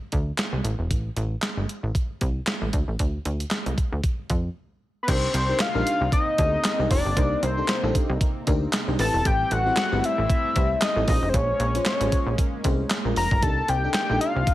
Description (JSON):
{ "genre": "early-eighties boogie funk", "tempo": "115 BPM", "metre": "4/4", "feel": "swing 56% on 16ths", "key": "unclear", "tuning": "A4 = 440 Hz", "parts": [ { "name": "plucky analog bass", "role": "bass", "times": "0.1-14.4 s", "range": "E1 to F2", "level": "-26 LUFS", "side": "equal", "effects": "none" }, { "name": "clean 12-bit digital drum machine", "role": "drums", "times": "0.1-14.5 s", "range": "crash cymbal, handclaps, hi-hat, kick drum, snare drum", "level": "-25 LUFS", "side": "equal", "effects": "gated reverb" }, { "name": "fat analog lead", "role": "melody", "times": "5.0-14.5 s", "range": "B4 to Bb5", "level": "-24 LUFS", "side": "left 2 dB", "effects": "chorus, slapback echo" }, { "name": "FM electric piano with soft pad layer", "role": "accompaniment", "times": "5.1-14.4 s", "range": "C4 to C5", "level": "-31 LUFS", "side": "left 2 dB", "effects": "chorus" }, { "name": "chorused pulse-width pad", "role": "sustained chords", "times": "5.5-14.5 s", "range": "C3 to Eb4", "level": "-34 LUFS", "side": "equal", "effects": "none" } ], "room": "little or no reverb", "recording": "none", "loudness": "-21 LUFS", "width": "side -15 dB against mid", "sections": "0.0-5.1 A section; 5.1-14.5 B section", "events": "break 4.6-5.1", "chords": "0.0 Csus2; 0.6 Am; 2.7 Dm; 5.1 Cm9; 9.0 Am9; 11.1 Bbm9; 13.4 Cm9" }